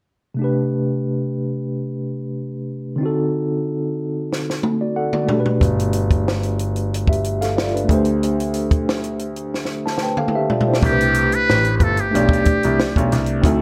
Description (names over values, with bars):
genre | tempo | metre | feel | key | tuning
R&B, neo-soul | 92 BPM | 4/4 | swing 53% on 16ths | unclear | A4 = 440 Hz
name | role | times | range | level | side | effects
tine electric piano | accompaniment | 0.3-13.6 s | C3 to A5 | -23 LUFS | equal | medium tremolo, plate reverb
compact cocktail drum kit | drums | 4.3-13.6 s | hi-hat, kick drum, snare drum, toms | -23 LUFS | equal | none
clear concert grand piano | bass | 5.6-13.6 s | G1 to D2 | -24 LUFS | equal | none
trumpet with metal mute | melody | 10.8-13.1 s | G4 to B4 | -22 LUFS | equal | plate reverb
room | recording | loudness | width
moderate studio reverb, RT60 0.6 s | none | -20 LUFS | mono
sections
0.4-10.8 A section; 10.8-13.6 B section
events
drum fill 4.3-5.6, 9.5-10.8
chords
0.4 C5; 3.0 D7b9; 5.3 Gadd9; 7.9 D5; 10.8 C5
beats
| 0.39 1.04 1.70 2.35 | 3.00 3.65 4.30 4.96 | 5.61 6.26 6.91 7.57 | 8.22 8.87 9.52 10.17 | 10.83 11.48 12.13 12.78 | 13.44